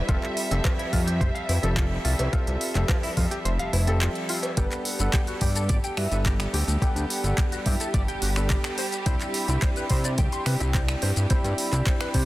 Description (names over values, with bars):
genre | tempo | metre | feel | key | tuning
nu-disco, nu disco | 107 BPM | 4/4 | straight | G major | A4 = 440 Hz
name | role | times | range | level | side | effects
bright baby grand piano | accompaniment | 0.0-12.3 s | F3 to B5 | -32 LUFS | equal | tape echo
dark symphonic violin section | sustained chords | 0.0-12.3 s | G3 to E5 | -34 LUFS | right 1 dB | sidechain pumping
direct-recorded clean electric guitar | riff | 0.1-12.2 s | E4 to C6 | -35 LUFS | left 1 dB | analog chorus, vintage 12-bit sampler grit, tape echo
fat analog bass | bass | 0.1-12.2 s | F1 to C3 | -25 LUFS | equal | none
electronic kick drum | drums | 0.1-12.3 s | none | -24 LUFS | equal | none
pop drum kit | drums | 0.1-12.3 s | finger snaps, handclaps, hi-hat, shaker | -31 LUFS | equal | soft clipping on snare
cowbell | percussion | 0.6-4.5 s | none | -37 LUFS | equal | none
soft octave-layered synth lead | melody | 4.6-7.9 s | B4 to G5 | -37 LUFS | equal | chorus, phaser, analog delay
room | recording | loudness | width
light reverb, digital ambience | dense, heavily limited modern master | -22 LUFS | side -17 dB against mid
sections
0.0-4.6 A section; 4.6-12.3 B section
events
kick drops out 3.5-4.6; drop 4.6-12.3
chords
0.1 Fmaj9; 4.6 Gmaj9; 8.8 Cmaj9